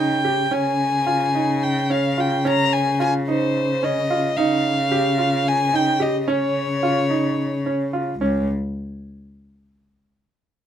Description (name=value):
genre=contemporary instrumental, chamber music in an uneven meter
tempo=219 BPM (eighths)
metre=7/8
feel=straight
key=Db lydian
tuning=A4 = 440 Hz
part: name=dark violin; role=melody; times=0.0-7.7 s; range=C5 to Bb5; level=-22 LUFS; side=left 1 dB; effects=none
part: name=clear baby grand piano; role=arpeggios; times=0.0-8.5 s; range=Db4 to G4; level=-23 LUFS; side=right 3 dB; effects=none
part: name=warm cello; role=bass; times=0.0-8.5 s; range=Db2 to Db3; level=-23 LUFS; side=left 2 dB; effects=none
room=light reverb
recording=close, detailed microphones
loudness=-18 LUFS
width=side -10 dB against mid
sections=0.0-8.2 A section; 8.2-10.1 B section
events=none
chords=0.0 Dbsus2; 0.5 Db; 4.4 Dbadd9; 6.3 Db; 8.2 N.C.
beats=0.24 | 0.52 0.79 1.07 1.35 1.62 1.90 2.18 | 2.45 2.73 3.00 3.28 3.55 3.82 4.09 | 4.37 4.64 4.91 5.18 5.46 5.73 6.00 | 6.27 6.55 6.82 7.10 7.37 7.65 7.93 | 8.21